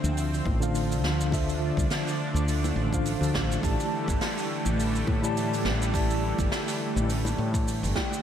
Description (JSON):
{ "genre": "sunset chillout", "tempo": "104 BPM", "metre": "4/4", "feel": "swing 56% on 16ths", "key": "D minor", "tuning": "A4 = 441 Hz", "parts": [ { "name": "mellow tine electric piano", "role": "accompaniment", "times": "0.0-8.2 s", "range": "D3 to A5", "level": "-30 LUFS", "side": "equal", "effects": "medium stereo tremolo, auto-pan, digital delay" }, { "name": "lush unison pad", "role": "sustained chords", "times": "0.0-8.2 s", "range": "D3 to D4", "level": "-32 LUFS", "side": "equal", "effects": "chorus" }, { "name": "woody fretless electric bass", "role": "bass", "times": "0.0-7.9 s", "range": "G1 to A2", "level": "-28 LUFS", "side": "equal", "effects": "none" }, { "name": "jazz brush drum kit", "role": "drums", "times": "0.0-8.2 s", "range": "hi-hat, shaker, snare drum", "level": "-34 LUFS", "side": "right 1 dB", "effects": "gated reverb" }, { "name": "bongos", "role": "percussion", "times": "0.0-8.1 s", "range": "none", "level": "-42 LUFS", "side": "left 5 dB", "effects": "none" }, { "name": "electronic kick drum", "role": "drums", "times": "0.5-8.1 s", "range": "none", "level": "-30 LUFS", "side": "equal", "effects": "overdrive" } ], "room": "moderate lush hall reverb, RT60 2.7 s", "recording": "bright 1980s-style digital production", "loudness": "-24 LUFS", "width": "side -9 dB against mid", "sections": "0.0-8.2 A section", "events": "none", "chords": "0.0 Dm9; 3.6 A7sus4" }